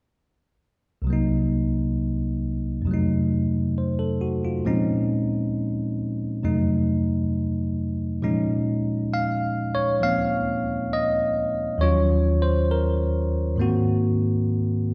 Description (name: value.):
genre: jazz ballad.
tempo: 67 BPM.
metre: 4/4.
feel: swing 67% on 8ths.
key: Bb minor from 8.2 s.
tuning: A4 = 440 Hz.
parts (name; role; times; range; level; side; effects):
bell-like tine electric piano; solo; 1.0-14.9 s; C2 to F5; -24 LUFS; equal; none.
room: wet scoring stage reverb, RT60 1.6 s.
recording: recorded in a church or concert hall.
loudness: -24 LUFS.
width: mono.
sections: 1.1-8.2 A section; 8.2-14.9 B section.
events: none.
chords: 1.1 Cm7b5; 2.9 F7b9; 4.6 Bbm11; 6.4 F7b9; 8.2 Bbm11; 11.8 Ebm9; 13.6 Ab9.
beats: | 1.07 1.97 2.86 3.76 | 4.64 5.53 6.42 7.32 | 8.21 9.11 10.00 10.89 | 11.78 12.67 13.56 14.44.